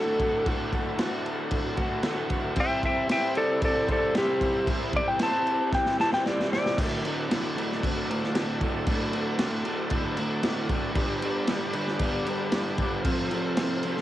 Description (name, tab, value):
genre	garage rock duo or trio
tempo	115 BPM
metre	4/4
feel	straight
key	D mixolydian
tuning	A4 = 443 Hz
part	clean lap steel guitar	melody	0.0-6.8 s	G4 to A5	-25 LUFS	left 1 dB	none
part	overdriven combo organ	sustained chords	0.0-14.0 s	D4 to D5	-35 LUFS	left 1 dB	lush chorus, cassette tape
part	crunchy overdriven guitar	riff	0.0-14.0 s	D2 to C5	-29 LUFS	right 1 dB	cassette tape
part	crunchy breakbeat drum kit	drums	0.2-14.0 s	crash cymbal, kick drum, snare drum	-29 LUFS	equal	cassette tape
room	light reverb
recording	home recording on cassette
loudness	-24 LUFS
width	side -14 dB against mid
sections	0.0-6.8 A section; 6.8-14.0 B section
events	electric slide guitar solo 0.0-6.8; drum fill 5.7-6.8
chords	0.0 D; 2.6 C; 6.8 D; 11.0 G; 13.1 F